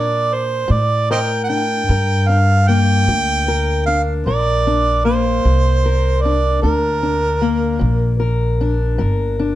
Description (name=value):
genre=acoustic country blues, solo or duo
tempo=51 BPM (dotted quarters)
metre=12/8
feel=straight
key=G minor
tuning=A4 = 440 Hz
part: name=warm harmonica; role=melody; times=0.0-8.2 s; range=Bb4 to G5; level=-18 LUFS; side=right 3 dB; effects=slapback echo
part: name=fingerpicked steel-string acoustic guitar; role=accompaniment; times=0.0-9.6 s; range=G2 to Bb4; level=-22 LUFS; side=left 5 dB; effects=none
part: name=upright bass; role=bass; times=0.0-9.6 s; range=G1 to Bb2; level=-17 LUFS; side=equal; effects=none
room=light reverb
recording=dark, warm production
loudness=-14 LUFS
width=side -14 dB against mid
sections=0.0-9.6 A section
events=none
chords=0.0 Gm